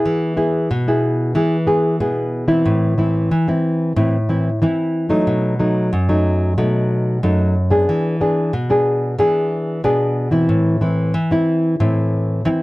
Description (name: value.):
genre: samba.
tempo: 92 BPM.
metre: 4/4.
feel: straight.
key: A minor.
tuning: A4 = 438 Hz.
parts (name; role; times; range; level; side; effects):
nylon-string guitar; solo; 0.0-12.6 s; F#2 to G#4; -15 LUFS; equal; none.
room: light reverb.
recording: dark, warm production.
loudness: -15 LUFS.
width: side -20 dB against mid.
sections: 0.0-12.6 A section.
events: none.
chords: 0.1 E; 2.7 Am; 5.3 B7; 7.9 E7; 10.5 Am.